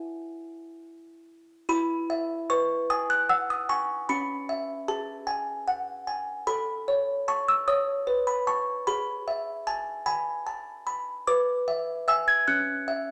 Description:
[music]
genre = classical, lullaby for music box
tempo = 50 BPM (dotted quarters)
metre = 6/8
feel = straight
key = E major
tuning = A4 = 440 Hz
[part]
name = music box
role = solo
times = 0.0-13.1 s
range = C#4 to G#6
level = -28 LUFS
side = equal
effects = none
[sound]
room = wet large studio reverb, RT60 1.3 s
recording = none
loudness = -28 LUFS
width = mono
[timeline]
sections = 0.0-1.7 A section; 1.7-13.1 A section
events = none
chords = 0.0 N.C.; 1.7 E; 4.1 C#m; 6.5 A; 8.9 E/G#; 11.3 E7/B; 12.5 A/C# (rootless)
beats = 0.49 | 1.70 2.90 | 4.10 5.29 | 6.49 7.68 | 8.88 10.08 | 11.28 12.48

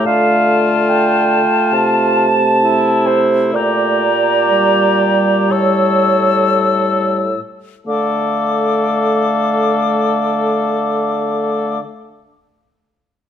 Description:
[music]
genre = classical, slow romantic movement for wind quintet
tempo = 46-74 BPM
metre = 4/4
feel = rubato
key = D minor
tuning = A4 = 439 Hz
[part]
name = concert flute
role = melody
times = 0.0-11.8 s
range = A5 to E6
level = -20 LUFS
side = left 10 dB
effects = none
[part]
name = warm oboe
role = second line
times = 0.0-11.8 s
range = E4 to A4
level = -20 LUFS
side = left 3 dB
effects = none
[part]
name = mellow clarinet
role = accompaniment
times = 0.0-11.8 s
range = C5 to A5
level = -18 LUFS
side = right 6 dB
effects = none
[part]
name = warm French horn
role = accompaniment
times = 0.0-11.8 s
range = G3 to A3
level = -20 LUFS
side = left 1 dB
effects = none
[part]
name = mellow bassoon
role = bass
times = 0.0-11.8 s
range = A2 to D3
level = -19 LUFS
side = right 1 dB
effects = none
[sound]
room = moderate recital hall reverb, RT60 1.3 s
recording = none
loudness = -12 LUFS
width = side -9 dB against mid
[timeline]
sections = 0.0-7.9 A section; 7.9-12.4 B section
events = slowing down 0.0-7.9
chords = 0.1 Dm; 1.7 Am/C; 3.5 Gm/Bb; 5.5 A7; 7.9 Dm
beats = | 0.06 0.88 1.73 2.62 | 3.53 4.49 5.51 6.65 | 7.88 9.00 10.14 11.28

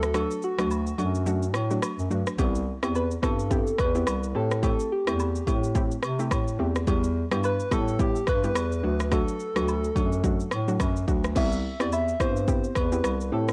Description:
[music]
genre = afrobeats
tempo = 107 BPM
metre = 4/4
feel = swing 58% on 16ths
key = unclear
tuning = A4 = 441 Hz
[part]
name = soft struck synth lead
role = melody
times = 0.0-13.5 s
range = F#4 to E5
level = -32 LUFS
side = equal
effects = chorus, analog delay
[part]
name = soft round pluck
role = accompaniment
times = 0.0-13.5 s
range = F#3 to G4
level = -32 LUFS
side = equal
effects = chorus
[part]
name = mellow bass clarinet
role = bass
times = 0.0-13.5 s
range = C2 to C3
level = -31 LUFS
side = equal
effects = none
[part]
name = afro-pop drum kit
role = drums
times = 0.0-13.5 s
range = crash cymbal, kick drum, rim click, shaker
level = -31 LUFS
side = equal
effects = vintage 12-bit sampler grit
[part]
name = agogo bells and woodblock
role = percussion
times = 0.1-13.2 s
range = none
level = -40 LUFS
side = equal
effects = none
[sound]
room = digital ambience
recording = dry, gritty hardware recording, cassette tape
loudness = -26 LUFS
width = mono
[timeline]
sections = 0.0-11.4 A section; 11.4-13.5 B section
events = break 0.0-2.4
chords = 0.0 D; 2.4 Cmaj7; 4.3 Am7; 6.9 Em; 8.8 D; 11.4 Cmaj7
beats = | 0.14 0.70 1.27 1.83 | 2.39 2.95 3.51 4.07 | 4.63 5.19 5.75 6.31 | 6.87 7.43 8.00 8.55 | 9.12 9.68 10.24 10.80 | 11.36 11.92 12.48 13.04

